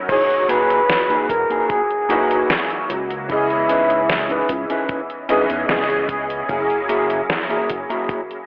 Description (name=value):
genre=vaporwave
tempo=75 BPM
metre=4/4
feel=straight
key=E lydian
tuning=A4 = 440 Hz
part: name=bright electric grand piano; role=accompaniment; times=0.0-8.5 s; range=A#2 to D#5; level=-21 LUFS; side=equal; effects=ensemble chorus, vintage 12-bit sampler grit, tape echo
part: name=mellow flugelhorn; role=melody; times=0.1-4.5 s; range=E4 to C#5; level=-19 LUFS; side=equal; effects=vintage 12-bit sampler grit, tape echo
part: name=detuned 8-bit digital drum machine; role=drums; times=0.1-8.5 s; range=crash cymbal, hi-hat, snare drum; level=-23 LUFS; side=equal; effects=gated reverb
part: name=kick drum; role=drums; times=0.1-8.3 s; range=none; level=-29 LUFS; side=equal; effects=none
part: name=mellow electric guitar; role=riff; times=0.5-8.2 s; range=A#3 to B4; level=-22 LUFS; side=equal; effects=wide subtle chorus, tape echo
part: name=chorused synth bass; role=bass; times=1.3-7.9 s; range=E1 to E2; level=-32 LUFS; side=equal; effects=tube saturation
room=moderate lush hall reverb, RT60 2.4 s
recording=cassette tape, telephone sound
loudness=-16 LUFS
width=side -32 dB against mid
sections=0.1-8.5 A section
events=none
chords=0.1 Emaj9#11; 3.3 C#m9; 6.5 F#9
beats=| 0.10 0.90 1.70 2.50 | 3.29 4.09 4.89 5.70 | 6.50 7.29 8.10